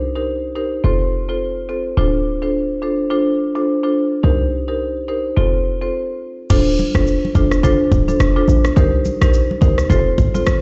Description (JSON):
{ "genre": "afrobeats", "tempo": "106 BPM", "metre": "4/4", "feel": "swing 58% on 16ths", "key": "unclear", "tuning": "A4 = 440 Hz", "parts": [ { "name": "short 808-style bass", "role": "bass", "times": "0.0-10.5 s", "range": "D1 to C2", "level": "-20 LUFS", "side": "equal", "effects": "none" }, { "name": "marimba with medium mallets", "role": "accompaniment", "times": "0.2-10.6 s", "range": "C4 to C5", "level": "-20 LUFS", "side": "equal", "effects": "none" }, { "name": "afro-pop drum kit", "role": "drums", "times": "6.5-10.6 s", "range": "crash cymbal, kick drum, rim click, shaker, toms", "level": "-21 LUFS", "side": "equal", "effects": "none" }, { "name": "congas", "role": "percussion", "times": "6.8-10.5 s", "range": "none", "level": "-28 LUFS", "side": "equal", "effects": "none" } ], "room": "light reverb", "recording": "played on a big sound system in a bare room, stone room reverb, nothing above 7.9 kHz", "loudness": "-17 LUFS", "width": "mono", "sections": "0.0-6.5 A section; 6.5-10.6 B section", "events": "stop 5.9-6.5", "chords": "0.0 Cm7; 0.8 F; 2.0 Dm7; 4.2 Cm7; 5.4 F; 6.5 Dm7; 8.8 Cm7; 9.9 F" }